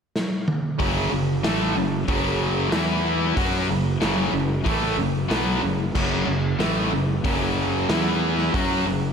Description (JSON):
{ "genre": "hard rock", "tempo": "93 BPM", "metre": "4/4", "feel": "straight", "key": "unclear", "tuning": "A4 = 440 Hz", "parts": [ { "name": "raw garage drum kit", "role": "drums", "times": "0.2-8.7 s", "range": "crash cymbal, hi-hat, kick drum, snare drum, toms", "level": "-26 LUFS", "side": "equal", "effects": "none" }, { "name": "distorted electric guitar", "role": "riff", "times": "0.8-9.1 s", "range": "F#2 to F#4", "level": "-25 LUFS", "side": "left 8 dB", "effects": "overdrive, slapback echo" }, { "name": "tight distorted guitar", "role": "riff", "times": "0.8-9.1 s", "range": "F#2 to F#4", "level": "-26 LUFS", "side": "right 10 dB", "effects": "distortion, slapback echo" }, { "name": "fuzz fingered electric bass", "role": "bass", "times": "0.8-9.1 s", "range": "F#1 to F#2", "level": "-27 LUFS", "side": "equal", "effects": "overdrive" } ], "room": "moderate lush hall reverb, RT60 1.8 s, small room ambience", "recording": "big arena sound", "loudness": "-20 LUFS", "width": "side -6 dB against mid", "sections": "0.8-9.1 A section", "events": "drum fill 0.1-0.8", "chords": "0.0 N.C.; 0.8 F#5; 2.7 E5; 3.4 F#5; 7.9 E5; 8.5 F#5" }